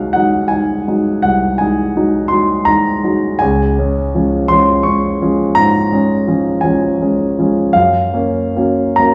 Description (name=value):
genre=classical, romantic nocturne for solo piano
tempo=46-57 BPM (dotted quarters)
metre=12/8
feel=rubato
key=Db major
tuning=A4 = 439 Hz
part: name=warm concert grand piano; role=solo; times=0.0-9.1 s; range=C2 to Db6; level=-14 LUFS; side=equal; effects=none
room=wet recital hall reverb, RT60 1.5 s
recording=heard from further back in the room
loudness=-14 LUFS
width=mono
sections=0.0-9.1 A section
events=none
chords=0.0 Ab7/C; 3.4 Db; 7.7 Gbmaj7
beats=0.16 1.25 2.31 | 3.42 4.50 5.55 6.63 | 7.75 8.99